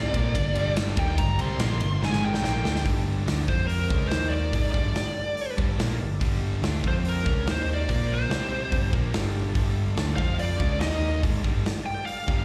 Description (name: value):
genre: hard rock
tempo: 143 BPM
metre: 4/4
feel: straight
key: G minor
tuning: A4 = 441 Hz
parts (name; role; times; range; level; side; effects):
- bluesy overdriven lead guitar; melody; 0.0-12.4 s; Bb4 to C6; -32 LUFS; equal; distortion, slapback echo
- overdriven tonewheel organ; sustained chords; 0.0-12.4 s; F3 to F5; -42 LUFS; equal; none
- biting overdriven guitar; riff; 0.0-2.9 s; G2 to Eb4; -35 LUFS; equal; none
- high-gain distorted guitar; riff; 0.0-12.4 s; G2 to F4; -38 LUFS; equal; distortion, slapback echo
- overdriven semi-hollow guitar; riff; 0.0-12.4 s; G2 to F4; -36 LUFS; equal; slapback echo
- hollow-body short-scale picked electric bass; bass; 0.0-12.4 s; G1 to F2; -30 LUFS; equal; none
- big rock drum kit; drums; 0.1-12.4 s; hi-hat, kick drum, ride cymbal, snare drum; -30 LUFS; equal; none
room: light reverb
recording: live gig heard through the venue's PA, recital hall reverb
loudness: -25 LUFS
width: mono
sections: 0.0-2.9 A section; 2.9-12.4 B section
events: lead electric guitar solo 0.0-2.9; drum fill 2.0-2.9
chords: 0.0 Gm; 2.0 Ab5; 2.4 Gm; 2.9 G5; 3.5 F5; 3.9 Gm; 4.1 Eb5; 4.5 Gm; 6.8 F5; 7.3 Gm; 7.5 Eb5; 7.9 Bb5; 8.3 C5; 8.7 Gm; 10.2 F5; 10.6 G5; 10.8 Eb5; 11.2 G5